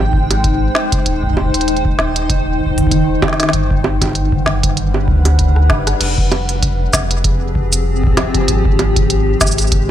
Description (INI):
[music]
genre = IDM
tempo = 97 BPM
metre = 4/4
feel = swing 56% on 16ths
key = F minor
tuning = A4 = 439 Hz
[part]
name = granular cloud pad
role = sustained chords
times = 0.0-9.9 s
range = Eb3 to G5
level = -18 LUFS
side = left 1 dB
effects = built-in reverb
[part]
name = round analog bass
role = bass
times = 0.0-9.9 s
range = Eb1 to D2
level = -17 LUFS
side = equal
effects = tube saturation
[part]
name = organic electronic drum kit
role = drums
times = 0.0-9.9 s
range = bongos, cabasa, crash cymbal, hi-hat, rim click, snare drum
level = -18 LUFS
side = right 2 dB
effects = digital delay
[part]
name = electronic kick drum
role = drums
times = 0.1-9.9 s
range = none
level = -18 LUFS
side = equal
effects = none
[sound]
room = light reverb, digital ambience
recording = none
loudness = -12 LUFS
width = side -11 dB against mid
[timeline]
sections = 0.0-6.0 A section; 6.0-9.9 B section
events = drum fill 5.5-6.0; band accent 5.9-6.2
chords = 0.0 Abmaj7; 1.1 Eb6; 3.5 Gmaj7; 6.0 Fmadd9; 8.5 Abmaj7